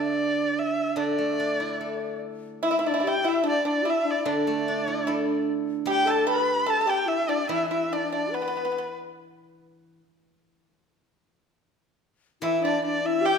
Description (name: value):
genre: chinese traditional, Chinese chamber ensemble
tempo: 74 BPM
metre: 2/4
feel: rubato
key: D zhi mode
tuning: A4 = 440 Hz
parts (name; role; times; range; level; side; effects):
- dark erhu; melody; 0.0-9.0, 12.4-13.4 s; B4 to B5; -26 LUFS; equal; none
- pipa; second line; 0.0-8.9, 12.4-13.4 s; B3 to B4; -30 LUFS; right 4 dB; none
- steel-string zither; accompaniment; 0.0-13.4 s; D3 to A4; -30 LUFS; right 2 dB; none
- breathy bright low xiao; second line; 2.6-8.9, 12.4-13.4 s; D4 to B4; -28 LUFS; left 6 dB; none
room: wet scoring stage reverb, RT60 1.5 s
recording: minimal, uncompressed stereo recording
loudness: -23 LUFS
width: side -6 dB against mid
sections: 0.0-2.6 A section; 2.6-13.4 B section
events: none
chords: none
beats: 0.15 | 0.97 1.80 | 2.63 3.45 | 4.27 5.08 | 5.88 6.69 | 7.51 8.34 | 9.17 10.00 | 10.81 11.62 | 12.44 13.25